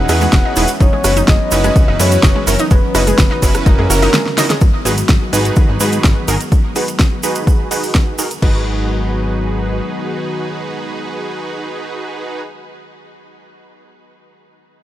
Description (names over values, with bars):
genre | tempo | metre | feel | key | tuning
progressive house | 126 BPM | 4/4 | straight | G# minor | A4 = 440 Hz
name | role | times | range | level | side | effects
soft octave-layered synth lead | melody | 0.0-4.5 s | A#4 to F#5 | -20 LUFS | left 2 dB | chorus, tremolo, sidechain pumping, digital delay
warm analog pad | sustained chords | 0.0-12.4 s | C#3 to F#4 | -25 LUFS | left 1 dB | chorus, sidechain pumping
supersaw stab | stabs | 0.0-12.4 s | C#4 to D#5 | -20 LUFS | right 2 dB | sidechain pumping, low-pass filter, digital delay
plucky analog bass | bass | 0.0-9.8 s | E1 to G#2 | -18 LUFS | equal | tube saturation, sidechain pumping
analog pluck | arpeggios | 0.1-4.5 s | G#3 to D#5 | -22 LUFS | right 1 dB | chorus, cassette tape, sidechain pumping, digital delay
deep house drum kit | drums | 0.1-8.5 s | crash cymbal, hi-hat, rim click, snare drum | -19 LUFS | equal | overdrive
tube shaker | percussion | 0.1-8.4 s | none | -24 LUFS | right 5 dB | none
electronic kick drum | drums | 0.3-8.5 s | none | -12 LUFS | equal | none
room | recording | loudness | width
digital ambience | none | -12 LUFS | side -13 dB against mid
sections
0.0-4.6 A section; 4.6-8.4 B section; 8.4-12.2 C section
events
drop 0.0-4.6; break 4.1-4.6; drum fill 4.3-4.6; band accent 4.5; filter sweep on supersaw synth 4.6-8.4; filter sweep on analog synth pad 4.6-8.4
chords
0.0 Emaj7; 0.8 F#7sus4; 4.6 G#m7